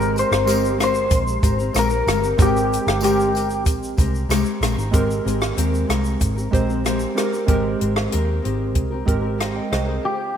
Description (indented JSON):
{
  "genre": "indie pop, bedroom pop",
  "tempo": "94 BPM",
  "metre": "4/4",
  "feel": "straight",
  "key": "unclear",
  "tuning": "A4 = 442 Hz",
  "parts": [
    { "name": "clean electric guitar", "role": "melody", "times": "0.0-3.6, 10.1-10.4 s", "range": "G4 to C5", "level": "-21 LUFS", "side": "left 2 dB", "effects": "ensemble chorus" },
    { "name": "nylon-string guitar", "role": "accompaniment", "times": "0.0-10.4 s", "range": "Db3 to Bb4", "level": "-26 LUFS", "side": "left 7 dB", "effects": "lush chorus, vibrato effect" },
    { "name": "warbly lo-fi synth keys", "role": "accompaniment", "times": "0.0-10.2 s", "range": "Ab3 to G5", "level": "-24 LUFS", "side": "right 5 dB", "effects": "chorus" },
    { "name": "vintage muted picked electric bass", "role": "bass", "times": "0.0-10.0 s", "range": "G1 to Eb2", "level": "-24 LUFS", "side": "equal", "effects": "none" },
    { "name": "compact cocktail drum kit", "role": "drums", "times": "0.0-9.9 s", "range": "hi-hat, kick drum, rim click, shaker", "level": "-22 LUFS", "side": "equal", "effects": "none" },
    { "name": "tambourine", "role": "percussion", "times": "0.2-4.8 s", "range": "none", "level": "-36 LUFS", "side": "right 4 dB", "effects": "none" }
  ],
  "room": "moderate lush hall reverb, RT60 1.9 s, small room ambience",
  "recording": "rough home demo mix",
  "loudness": "-18 LUFS",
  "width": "side -9 dB against mid",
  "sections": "0.0-4.9 A section; 4.9-10.0 B section",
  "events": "none",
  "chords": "0.0 Abmaj9"
}